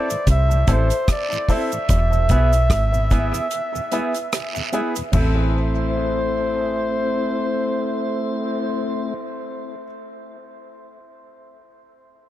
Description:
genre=dub reggae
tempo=74 BPM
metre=4/4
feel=swing 58% on 16ths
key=A harmonic minor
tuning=A4 = 440 Hz
part: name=clear flugelhorn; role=melody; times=0.0-9.1 s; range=C5 to E5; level=-25 LUFS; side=equal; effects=dub echo
part: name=electric guitar with an envelope filter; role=accompaniment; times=0.0-9.9 s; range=B3 to A4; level=-30 LUFS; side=right 4 dB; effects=warbly pitch drift, dub echo
part: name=clear grand piano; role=stabs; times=0.0-9.8 s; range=E4 to E5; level=-30 LUFS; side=left 4 dB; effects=dub echo
part: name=mellow tonewheel organ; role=accompaniment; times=0.1-9.1 s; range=E2 to E4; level=-28 LUFS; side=left 2 dB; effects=slow rotary speaker, dub echo
part: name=deep reggae drum kit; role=drums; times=0.1-5.3 s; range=crash cymbal, hi-hat, kick drum, rim click, toms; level=-20 LUFS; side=equal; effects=none
part: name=cabasa and guiro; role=percussion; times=0.1-5.5 s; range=none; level=-34 LUFS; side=right 7 dB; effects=dub echo
part: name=deep dub fingered electric bass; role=bass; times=0.3-9.8 s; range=E1 to C2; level=-19 LUFS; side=equal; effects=none
room=light reverb, small room ambience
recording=echo-heavy mix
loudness=-18 LUFS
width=side -13 dB against mid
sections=0.0-5.1 A section; 5.1-8.4 B section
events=break 3.5-5.1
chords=0.0 Am; 1.9 E; 5.1 Am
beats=0.27 1.08 | 1.89 2.70 3.51 4.32 | 5.13 5.94 6.75 7.57

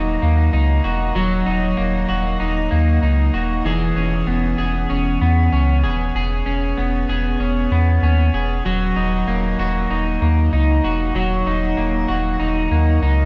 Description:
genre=dream pop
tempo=96 BPM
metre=4/4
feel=straight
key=unclear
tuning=A4 = 442 Hz
part: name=electric guitar at the edge of break-up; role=arpeggios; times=0.0-13.3 s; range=E3 to G#4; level=-22 LUFS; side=equal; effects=lush chorus, tape echo
part: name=sub bass with octave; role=bass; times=0.0-13.3 s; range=D#1 to E2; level=-21 LUFS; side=equal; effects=none
room=light reverb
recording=nothing above 7.8 kHz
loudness=-19 LUFS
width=mono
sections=0.0-13.3 A section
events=none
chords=0.0 D#m; 3.7 C#m7; 8.7 D#m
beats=0.53 | 1.15 1.78 2.40 3.03 | 3.65 4.28 4.90 5.53 | 6.15 6.78 7.40 8.03 | 8.65 9.28 9.90 10.53 | 11.15 11.78 12.40 13.03

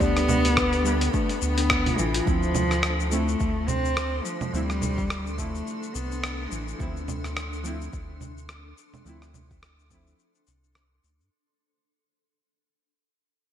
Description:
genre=organic downtempo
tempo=106 BPM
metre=4/4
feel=swing 57% on 16ths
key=D dorian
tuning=A4 = 440 Hz
part: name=dark cello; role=melody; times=0.0-6.8 s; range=E3 to C4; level=-28 LUFS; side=equal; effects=ping-pong delay
part: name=deep mellow chord stab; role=accompaniment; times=0.0-11.3 s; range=C3 to E4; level=-35 LUFS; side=right 3 dB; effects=chorus, sidechain pumping, digital delay
part: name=granular cloud pad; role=sustained chords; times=0.0-11.3 s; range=D4 to C6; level=-37 LUFS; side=left 1 dB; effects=built-in reverb, sidechain pumping
part: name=steel tongue drum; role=arpeggios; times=0.0-2.3 s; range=D4 to D5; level=-31 LUFS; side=left 5 dB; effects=digital delay
part: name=round analog bass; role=bass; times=0.0-11.3 s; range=A1 to G2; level=-29 LUFS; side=equal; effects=sidechain pumping
part: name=dusty soul sampler-style drum kit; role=drums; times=0.0-11.3 s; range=congas, hi-hat, rim click, shaker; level=-29 LUFS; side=right 1 dB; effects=gated reverb
part: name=electronic kick drum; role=drums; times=0.0-10.0 s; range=none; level=-30 LUFS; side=equal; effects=overdrive
room=light reverb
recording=bright 1980s-style digital production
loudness=-23 LUFS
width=side -10 dB against mid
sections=0.0-2.3 A section; 2.3-11.3 B section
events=fade-out 2.3-11.3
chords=0.0 Gadd9; 2.3 Dm7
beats=| 0.01 0.57 1.14 1.70 | 2.27 2.84 3.40 3.97 | 4.53 5.10 5.67 6.23 | 6.80 7.36 7.93 8.50 | 9.06 9.63 10.19 10.76

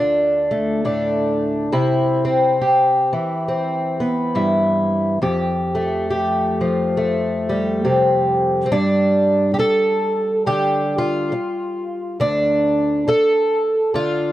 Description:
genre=folk, solo fingerstyle acoustic guitar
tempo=69 BPM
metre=4/4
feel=swing 60% on 8ths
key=unclear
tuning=A4 = 439 Hz
part: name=fingerpicked twelve-string acoustic guitar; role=solo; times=0.0-14.3 s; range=D2 to A4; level=-16 LUFS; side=equal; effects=none
room=little or no reverb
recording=dark, warm production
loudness=-16 LUFS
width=side -14 dB against mid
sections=0.0-8.7 A section; 8.7-14.3 B section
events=none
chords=0.0 Dm; 1.7 Cmaj7; 5.2 Fadd9; 8.7 G5; 12.2 Dm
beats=0.85 | 1.73 2.60 3.47 4.34 | 5.21 6.09 6.96 7.83 | 8.71 9.58 10.45 11.33 | 12.20 13.08 13.95

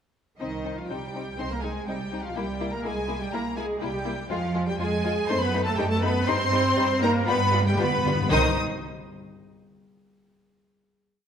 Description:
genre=classical, dramatic, fast romantic movement for symphony orchestra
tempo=122 BPM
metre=4/4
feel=rubato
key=C minor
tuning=A4 = 443 Hz
part: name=warm symphonic violin section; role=melody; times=0.4-8.6 s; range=Eb5 to Eb6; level=-30 LUFS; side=left 2 dB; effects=none
part: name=warm symphonic violin section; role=second line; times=0.4-8.6 s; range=G3 to C5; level=-31 LUFS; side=left 3 dB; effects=none
part: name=rich symphonic viola section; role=accompaniment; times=0.4-8.6 s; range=Eb4 to C5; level=-30 LUFS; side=equal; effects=none
part: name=rich symphonic cello section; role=bass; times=0.4-8.6 s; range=Eb3 to C4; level=-29 LUFS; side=right 2 dB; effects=none
part: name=warm symphonic double bass section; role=bass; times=0.4-8.6 s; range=C2 to G2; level=-30 LUFS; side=right 2 dB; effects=none
part: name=timpani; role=percussion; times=7.3-8.5 s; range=G2 to C3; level=-31 LUFS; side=left 3 dB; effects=none
room=wet scoring stage reverb, RT60 1.6 s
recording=none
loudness=-23 LUFS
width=side -8 dB against mid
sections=0.4-8.3 A section; 8.3-10.3 final chord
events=timpani fill 7.3-8.3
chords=0.4 Cm; 2.4 C7; 4.3 Fm; 5.3 F#dim7; 6.3 Cm/G; 7.3 G7; 8.3 Cm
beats=| 0.40 0.90 1.39 1.88 | 2.36 2.84 3.33 3.81 | 4.30 4.79 5.29 5.78 | 6.27 6.77 7.27 7.79 | 8.31

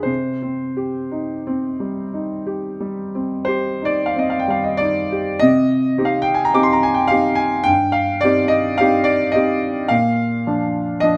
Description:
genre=classical, romantic nocturne for solo piano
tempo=41-55 BPM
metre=4/4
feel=rubato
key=C minor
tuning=A4 = 440 Hz
part: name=clear concert grand piano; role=solo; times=0.0-11.2 s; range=G2 to D6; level=-19 LUFS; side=equal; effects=none
room=light reverb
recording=none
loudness=-19 LUFS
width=mono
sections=0.0-5.4 A section; 5.4-11.2 A section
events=none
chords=0.1 Cm; 9.9 Bb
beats=| 0.08 1.48 2.83 4.16 | 5.45 6.55 7.69 8.80 | 9.91 11.03

